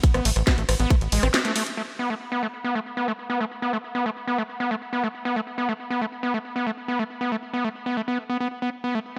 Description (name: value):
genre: psychedelic trance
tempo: 138 BPM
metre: 4/4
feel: straight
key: unclear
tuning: A4 = 440 Hz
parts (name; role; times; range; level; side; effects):
- drum and bass drum kit; drums; 0.0-1.8 s; hi-hat, ride cymbal, rim click, snare drum; -28 LUFS; equal; none
- electronic kick drum; drums; 0.0-1.0 s; none; -21 LUFS; equal; none
- screaming distorted acid line; riff; 0.1-9.2 s; G#3 to C4; -28 LUFS; equal; distortion, chorus, sidechain pumping, digital delay
- tight sequencer bass; bass; 0.1-1.3 s; A1; -26 LUFS; equal; none
room: light reverb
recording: none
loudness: -26 LUFS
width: mono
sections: 0.0-1.8 A section; 1.8-9.2 B section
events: drop 0.0-1.8; kick drops out 1.3-1.8; band accent 1.3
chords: 0.0 Asus2; 1.8 N.C.